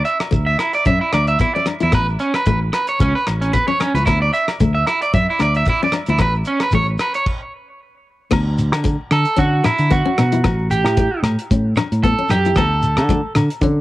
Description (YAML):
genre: highlife guitar band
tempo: 113 BPM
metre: 4/4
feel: swing 55% on 16ths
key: D major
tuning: A4 = 440 Hz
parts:
  - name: electric guitar at the edge of break-up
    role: arpeggios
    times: 0.0-13.3 s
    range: C#4 to E5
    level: -19 LUFS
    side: right 2 dB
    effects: cassette tape, analog delay
  - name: damped 70s drum kit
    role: drums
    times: 0.0-13.8 s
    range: crash cymbal, hi-hat, kick drum, rim click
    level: -22 LUFS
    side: equal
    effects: none
  - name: shekere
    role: percussion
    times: 0.1-13.8 s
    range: none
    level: -23 LUFS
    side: left 1 dB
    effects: none
  - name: agogo bells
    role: percussion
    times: 0.2-13.5 s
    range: none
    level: -30 LUFS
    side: left 6 dB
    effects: none
  - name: picked steel-string acoustic guitar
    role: accompaniment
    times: 0.3-13.8 s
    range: A3 to E4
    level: -23 LUFS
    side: left 6 dB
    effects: cassette tape
  - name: fingered electric bass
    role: bass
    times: 0.3-13.8 s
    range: A1 to D3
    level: -18 LUFS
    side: equal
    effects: none
room: little or no reverb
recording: home recording on cassette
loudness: -15 LUFS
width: side -16 dB against mid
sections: 0.0-8.3 A section; 8.3-13.8 B section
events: stop 7.3-8.3; clean electric guitar solo 8.3-13.8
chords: 0.0 Dsus2; 1.9 Aadd9; 4.1 Dsus2; 6.2 Aadd9; 8.3 Dadd9; 10.4 N.C.; 12.6 D5